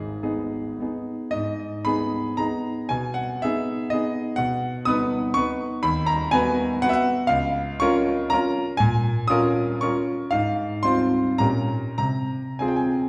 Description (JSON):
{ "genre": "classical, romantic triple-time dance for piano with dotted rhythms", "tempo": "95-129 BPM", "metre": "3/4", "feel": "rubato", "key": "G# minor, F minor from 7.3 s", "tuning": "A4 = 442 Hz", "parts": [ { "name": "clear grand piano", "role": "solo", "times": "0.0-13.1 s", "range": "G#1 to D#6", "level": "-24 LUFS", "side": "equal", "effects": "none" } ], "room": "wet recital hall reverb, RT60 1.5 s", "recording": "heard from further back in the room", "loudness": "-24 LUFS", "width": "mono", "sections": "0.0-1.3 A section; 1.3-13.1 B section", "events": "none", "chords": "0.0 G#m; 2.9 G#m/B; 4.4 B; 5.8 B/D#; 7.3 Db6; 8.8 Bbm7; 10.3 Fm/Ab; 11.4 Gdim/Bb; 12.0 Fm/C" }